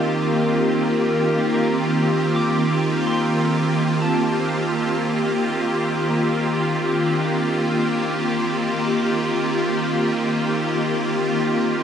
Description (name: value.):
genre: ambient.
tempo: free time.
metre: none.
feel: none.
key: Eb lydian.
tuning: A4 = 440 Hz.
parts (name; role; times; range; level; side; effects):
evolving wavetable pad; sustained chords; 0.0-11.8 s; Eb3 to G4; -19 LUFS; equal; ensemble chorus, built-in reverb, shimmer reverb.
analog drone; drone; 0.0-11.6 s; Eb3 to Bb3; -27 LUFS; equal; chorus.
electric guitar at the edge of break-up; arpeggios; 1.5-11.5 s; Bb3 to D6; -32 LUFS; left 1 dB; tremolo, tape echo, shimmer reverb.
room: wet lush hall reverb, RT60 2.8 s.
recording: nothing above 10.9 kHz.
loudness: -18 LUFS.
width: side -8 dB against mid.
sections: 0.0-11.5 A section.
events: fade-out on clean electric guitar 0.0-11.5.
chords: 0.0 Ebmaj9.